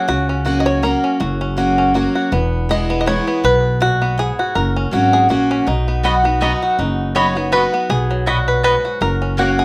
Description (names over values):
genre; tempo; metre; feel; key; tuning
bluegrass; 161 BPM; 3/4; swing 55% on 8ths; B major; A4 = 439 Hz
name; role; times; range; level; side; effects
bluegrass banjo; melody; 0.0-9.6 s; F#3 to D#5; -22 LUFS; equal; plate reverb
picked steel-string acoustic guitar; accompaniment; 0.0-9.6 s; E2 to F#4; -21 LUFS; equal; none
upright bass; bass; 0.1-9.6 s; E1 to C#2; -22 LUFS; equal; none
mandolin; stabs; 6.0-9.5 s; A#3 to B5; -22 LUFS; equal; none
room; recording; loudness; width
moderate studio reverb, RT60 0.7 s; none; -17 LUFS; mono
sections
0.0-9.6 A section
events
five-string banjo solo 0.0-9.6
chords
0.0 F#; 2.3 E; 3.4 B5; 4.6 F#; 5.7 B; 9.0 F#